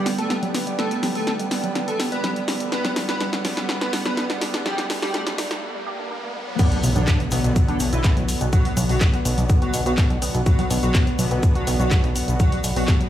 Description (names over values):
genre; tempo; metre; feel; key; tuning
melodic techno; 124 BPM; 4/4; straight; B minor; A4 = 440 Hz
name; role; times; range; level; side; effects
wide unison lead; melody; 0.0-12.9 s; D4 to B4; -30 LUFS; right 1 dB; sidechain pumping, digital delay
airy dreamy lead; second line; 0.0-12.9 s; D3 to B3; -32 LUFS; equal; chorus, sidechain pumping, digital delay
dark analog pad; sustained chords; 0.0-13.1 s; B3 to G5; -34 LUFS; equal; wide subtle chorus, sidechain pumping
woody wave-folded pluck; arpeggios; 0.0-13.0 s; F#3 to B4; -32 LUFS; left 1 dB; wide subtle chorus, sidechain pumping, digital delay
analog synth brass; stabs; 0.0-12.4 s; D3 to B3; -29 LUFS; right 1 dB; chorus, sidechain pumping, digital delay
riser and impact; sound effects; 0.6-8.5 s; none; -31 LUFS; equal; none
punchy analog drum machine; drums; 0.1-13.1 s; congas, crash cymbal, handclaps, hi-hat, snare drum; -27 LUFS; equal; sidechain pumping on hats, sidechain pumping on perc, sidechain pumping on cymbals
analog drone; drone; 8.2-13.1 s; B2 to F#4; -35 LUFS; equal; none
breakbeat sampler-style drum kit; drums; 6.6-13.0 s; hi-hat, shaker, snare drum; -36 LUFS; equal; none
electronic kick drum; drums; 6.6-13.0 s; none; -18 LUFS; equal; none
tube shaker; percussion; 6.6-13.0 s; none; -35 LUFS; left 4 dB; none
fat analog bass; bass; 6.8-12.8 s; B1; -23 LUFS; equal; sidechain pumping
room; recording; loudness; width
light reverb; played on a big sound system in a bare room, stone room reverb, high-pass filter; -19 LUFS; side -12 dB against mid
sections
0.0-6.6 A section; 6.6-13.1 B section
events
build-up 0.0-6.6; drum fill 0.0-5.6; filter sweep on synth pluck 0.0-6.6; break 5.6-6.6; drop 6.6-13.1; impact 6.6-8.5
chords
0.0 G; 6.6 Bm